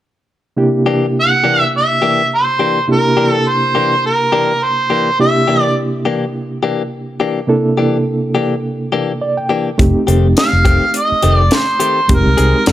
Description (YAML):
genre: straight-eighth soul blues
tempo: 104 BPM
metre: 4/4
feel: swing 56% on 16ths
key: C mixolydian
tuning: A4 = 440 Hz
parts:
  - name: bright reed electric piano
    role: accompaniment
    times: 0.6-12.7 s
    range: C3 to G5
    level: -17 LUFS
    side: right 2 dB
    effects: fast tremolo, plate reverb
  - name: direct-recorded clean electric guitar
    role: stabs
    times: 0.9-12.6 s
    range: Eb3 to Ab4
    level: -19 LUFS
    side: left 5 dB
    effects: plate reverb
  - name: warm harmonica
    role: melody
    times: 1.2-5.7, 10.4-12.7 s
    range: Bb4 to F#5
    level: -14 LUFS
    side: right 1 dB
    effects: overdrive, plate reverb
  - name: vintage muted fingered electric bass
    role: bass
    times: 9.8-12.7 s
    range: F1 to C2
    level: -13 LUFS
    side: equal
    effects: none
  - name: tight funk drum kit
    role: drums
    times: 9.8-12.7 s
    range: hi-hat, kick drum, snare drum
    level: -15 LUFS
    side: equal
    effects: none
room: moderate studio reverb, RT60 0.7 s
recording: none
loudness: -12 LUFS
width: side -12 dB against mid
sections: 0.6-12.7 A section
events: reed electric piano fill 8.9-9.8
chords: 0.6 C9; 9.8 F9; 12.1 Fm7